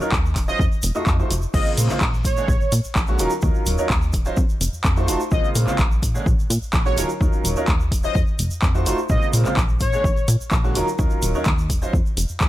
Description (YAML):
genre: filtered disco house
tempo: 127 BPM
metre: 4/4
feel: straight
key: Bb minor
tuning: A4 = 440 Hz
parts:
  - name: clear baby grand piano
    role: accompaniment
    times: 0.0-11.9 s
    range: Db3 to Eb5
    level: -25 LUFS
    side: right 1 dB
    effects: phaser, sidechain pumping
  - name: plucky analog bass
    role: bass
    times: 0.0-12.5 s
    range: Eb1 to Bb2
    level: -23 LUFS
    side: equal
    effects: sidechain pumping
  - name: egg shaker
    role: percussion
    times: 0.0-12.5 s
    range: none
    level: -33 LUFS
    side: right 2 dB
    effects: sidechain pumping on perc
  - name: electronic kick drum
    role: drums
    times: 0.1-12.5 s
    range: none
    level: -20 LUFS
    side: equal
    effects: none
  - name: punchy analog drum machine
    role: drums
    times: 0.1-12.5 s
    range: crash cymbal, handclaps, hi-hat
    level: -26 LUFS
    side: equal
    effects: sidechain pumping on hats, sidechain pumping on cymbals
  - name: analog synth brass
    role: melody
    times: 0.5-10.3 s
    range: C#5 to Eb5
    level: -26 LUFS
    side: equal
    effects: chorus, sidechain pumping
room: little or no reverb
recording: none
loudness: -18 LUFS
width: side -15 dB against mid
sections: 0.0-12.5 A section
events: none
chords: 0.0 Ebm9; 0.6 F7b9; 1.5 Bbm9; 2.2 Bb7#9; 3.2 Ebm9; 4.4 F7b9; 5.3 Bbm9; 6.0 Bb7#9; 7.0 Ebm9; 8.2 F7b9; 9.1 Bbm9; 9.8 Bb7#9; 10.8 Ebm9; 11.9 N.C.